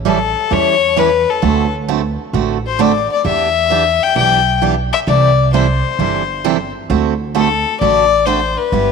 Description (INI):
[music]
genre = country, western swing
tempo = 132 BPM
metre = 4/4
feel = swing 68% on 8ths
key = unclear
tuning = A4 = 440 Hz
[part]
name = upright bass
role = bass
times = 0.0-8.9 s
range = G1 to E2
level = -19 LUFS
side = right 2 dB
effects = none
[part]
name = clear fiddle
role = melody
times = 0.1-8.9 s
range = A4 to G5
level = -15 LUFS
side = left 9 dB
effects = none
[part]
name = picked steel-string acoustic guitar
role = accompaniment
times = 0.1-8.9 s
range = C3 to A4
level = -18 LUFS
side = right 13 dB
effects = none
[sound]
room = moderate plate reverb, RT60 3.1 s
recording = 1960s-style stereo with parts hard left and right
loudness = -12 LUFS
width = side -5 dB against mid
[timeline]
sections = 0.0-8.9 A section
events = none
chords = 0.0 A7; 1.4 D7; 3.2 Em7; 5.1 C6; 6.9 D7